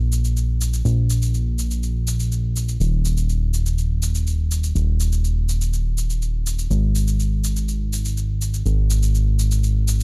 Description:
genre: progressive house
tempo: 123 BPM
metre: 4/4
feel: straight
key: unclear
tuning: A4 = 440 Hz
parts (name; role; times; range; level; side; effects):
- fat analog bass; bass; 0.0-10.0 s; Eb1 to Bb1; -21 LUFS; equal; none
- shaker; drums; 0.1-10.0 s; none; -33 LUFS; equal; none
room: little or no reverb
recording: dark, warm production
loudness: -21 LUFS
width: mono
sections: 0.0-10.0 A section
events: none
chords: none

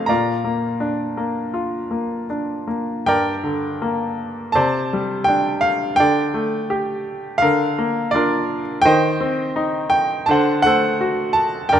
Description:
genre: classical, lyrical solo piano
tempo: 83 BPM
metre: 4/4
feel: rubato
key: Bb major, G minor from 3.1 s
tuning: A4 = 440 Hz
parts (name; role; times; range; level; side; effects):
- bright grand piano; solo; 0.0-11.8 s; F2 to Bb5; -17 LUFS; equal; none
room: light reverb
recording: nothing above 10.3 kHz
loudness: -17 LUFS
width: side -9 dB against mid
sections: 0.0-3.1 A section; 3.1-11.8 B section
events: none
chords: 0.1 Bb; 3.1 Gm; 4.5 Csus2; 6.0 Dsus4; 7.4 Bb/D; 8.8 Cm/Eb; 10.3 D7

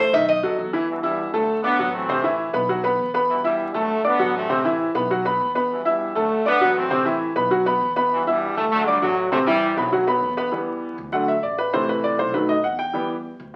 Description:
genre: latin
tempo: 199 BPM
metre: 4/4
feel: straight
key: E minor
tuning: A4 = 440 Hz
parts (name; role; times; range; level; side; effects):
- Cuban tres; melody; 0.0-0.6 s; C5 to E5; -22 LUFS; equal; none
- bright upright piano; accompaniment; 0.0-13.1 s; C3 to E6; -23 LUFS; equal; none
- upright bass; bass; 0.0-13.6 s; A1 to E2; -40 LUFS; equal; none
- brilliant trombone section; melody; 0.9-10.3 s; G2 to C4; -26 LUFS; equal; none
room: wet large studio reverb, RT60 0.8 s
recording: very old 78 rpm record, vinyl crackle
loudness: -21 LUFS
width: mono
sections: 0.9-10.5 A section; 10.5-13.6 B section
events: upright piano solo 10.5-13.6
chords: 0.3 B7; 0.9 Em; 1.5 D; 2.1 Am; 2.7 B5; 3.3 Em; 3.9 D; 4.5 Am; 5.1 B5; 5.7 Em; 6.3 D; 6.9 Am; 7.5 B5; 8.1 Em; 8.7 D; 9.3 Am; 9.9 B7; 10.5 Em; 11.1 D; 11.7 Am; 12.3 B7; 12.9 Em

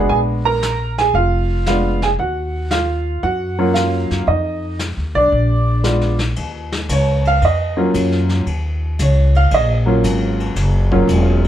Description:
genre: jazz piano trio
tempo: 115 BPM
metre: 4/4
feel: swing 68% on 8ths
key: Eb minor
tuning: A4 = 439 Hz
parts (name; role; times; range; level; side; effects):
- warm upright piano; melody; 0.0-11.5 s; Gb3 to Bb5; -17 LUFS; right 1 dB; none
- upright bass; bass; 0.0-11.5 s; Fb1 to Gb2; -17 LUFS; equal; none
- vintage brush drum kit; drums; 0.1-11.5 s; brushed snare drum, hi-hat, kick drum, ride cymbal, snare drum; -27 LUFS; left 3 dB; none
room: light reverb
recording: dark, warm production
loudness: -14 LUFS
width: side -11 dB against mid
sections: 0.0-6.4 A section; 6.4-11.5 B section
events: upright piano solo 6.4-11.5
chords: 0.1 Bb7b9; 2.2 Ebm9; 4.3 Bdim; 5.3 Bb7b9; 6.4 Ebm9

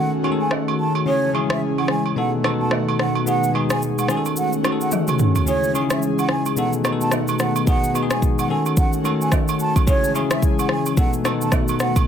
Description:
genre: afrobeats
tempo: 109 BPM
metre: 4/4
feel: swing 58% on 16ths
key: C# minor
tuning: A4 = 438 Hz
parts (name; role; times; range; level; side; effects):
- mellow hollow concert flute; melody; 0.0-11.9 s; C#5 to A5; -25 LUFS; right 3 dB; ping-pong delay
- bell-like tine electric piano; accompaniment; 0.0-12.1 s; B2 to A4; -23 LUFS; left 5 dB; none
- airy breathy pad; sustained chords; 0.0-12.1 s; D#3 to G#4; -25 LUFS; right 1 dB; chorus, sidechain pumping
- agogo bells and woodblock; percussion; 0.2-12.1 s; none; -28 LUFS; right 10 dB; none
- deep house drum kit; drums; 0.5-12.1 s; kick drum, rim click, shaker, toms; -21 LUFS; equal; none
room: light reverb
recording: faint mains hum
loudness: -17 LUFS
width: side -8 dB against mid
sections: 0.0-12.1 A section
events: drum fill 4.9-5.5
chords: 0.0 D#m7b5; 1.1 C#m; 2.2 B7; 3.3 G#m/B; 4.1 D#m7b5; 5.5 C#m; 6.6 B7; 7.7 G#m/B; 8.5 D#m7b5; 9.9 C#m; 11.0 B7

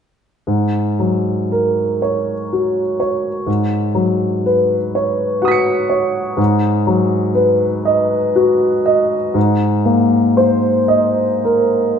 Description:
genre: classical, impressionist solo piano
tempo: 61 BPM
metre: 3/4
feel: uneven beats, rubato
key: G# minor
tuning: A4 = 441 Hz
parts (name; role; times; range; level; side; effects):
- clear concert grand piano; solo; 0.5-12.0 s; G#2 to C#7; -13 LUFS; equal; none
room: moderate recital hall reverb, RT60 1.5 s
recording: nothing above 10.7 kHz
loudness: -14 LUFS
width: side -7 dB against mid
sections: 0.5-12.0 A section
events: none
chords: 0.5 G#9sus4; 3.5 B69/G#; 6.4 G#m7; 9.4 A#9sus4/G#

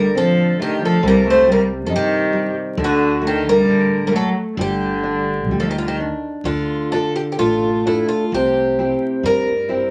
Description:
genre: fado-style ballad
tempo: 64-69 BPM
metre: 2/4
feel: rubato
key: G minor, D minor from 6.5 s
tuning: A4 = 440 Hz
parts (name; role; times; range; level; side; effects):
- picked twelve-string acoustic guitar; melody; 0.0-9.9 s; E4 to C5; -22 LUFS; equal; none
- warm cello; second line; 0.0-6.0 s; D3 to A3; -21 LUFS; equal; none
- nylon-string guitar; accompaniment; 0.0-9.9 s; C3 to A4; -23 LUFS; equal; none
- upright bass; bass; 0.0-9.8 s; G1 to G2; -30 LUFS; equal; none
room: moderate studio ambience, RT60 0.5 s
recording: vinyl crackle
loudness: -18 LUFS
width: mono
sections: 0.0-6.5 A section; 6.5-9.9 B section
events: none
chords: 0.0 D5; 1.0 Cm; 2.8 D5; 4.6 G5; 6.5 Dm; 8.3 C

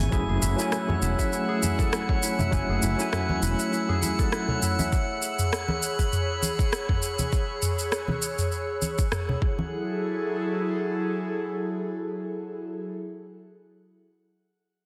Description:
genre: sunset chillout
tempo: 100 BPM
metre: 4/4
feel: swing 55% on 16ths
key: F# minor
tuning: A4 = 440 Hz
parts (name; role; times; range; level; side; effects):
- overdriven tine electric piano; accompaniment; 0.0-4.9 s; F#3 to G#5; -32 LUFS; equal; fast tremolo, delay
- airy breathy pad; sustained chords; 0.0-12.9 s; F#3 to E6; -33 LUFS; equal; chorus
- mellow fretless electric bass; bass; 0.0-3.5 s; E1 to F#1; -29 LUFS; equal; tube saturation
- drifting glass-harmonics texture; texture; 0.0-9.7 s; F#5 to G#5; -38 LUFS; equal; chorus, built-in reverb
- concert harp; arpeggios; 0.1-7.2 s; E4 to E5; -36 LUFS; equal; delay
- electronic kick drum; drums; 0.1-9.6 s; none; -28 LUFS; equal; none
- smooth R&B drum kit; drums; 0.1-9.3 s; rim click, shaker, toms; -32 LUFS; equal; soft clipping on snare
- congas; percussion; 0.9-9.7 s; none; -34 LUFS; equal; none
room: moderate plate reverb, RT60 1.7 s, digital ambience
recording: dense, heavily limited modern master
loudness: -27 LUFS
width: mono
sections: 0.1-9.7 A section; 9.7-12.1 B section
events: none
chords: 0.1 F#m9; 4.9 C#m7; 9.4 F#m9

